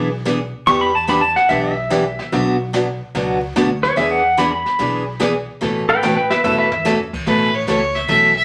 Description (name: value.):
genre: country, western swing.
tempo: 146 BPM.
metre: 4/4.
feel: swing 68% on 8ths.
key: A major.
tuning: A4 = 440 Hz.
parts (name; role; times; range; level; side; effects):
picked steel-string acoustic guitar; accompaniment; 0.0-8.3 s; B2 to A4; -22 LUFS; equal; none.
upright bass; bass; 0.0-8.4 s; A1 to E2; -30 LUFS; equal; none.
jazz brush drum kit; drums; 0.3-8.4 s; brushed snare drum, crash cymbal, hi-hat, kick drum, snare drum, toms; -30 LUFS; equal; none.
pedal steel guitar; second line; 0.7-6.9 s; B4 to C#6; -18 LUFS; equal; none.
clear fiddle; melody; 7.3-8.4 s; B4 to E5; -17 LUFS; equal; none.
room: wet studio reverb, RT60 0.7 s.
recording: vinyl crackle.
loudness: -17 LUFS.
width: mono.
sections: 0.0-7.3 A section; 7.3-8.4 B section.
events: pedal steel guitar solo 0.0-7.3; drum fill 6.0-6.9.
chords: 0.0 E7; 0.7 Em7; 2.3 Bm; 4.0 E7; 5.6 Aadd9.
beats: 0.26 | 0.67 1.08 1.50 1.91 | 2.32 2.73 3.15 3.56 | 3.97 4.38 4.79 5.21 | 5.62 6.03 6.44 6.85 | 7.27 7.68 8.09.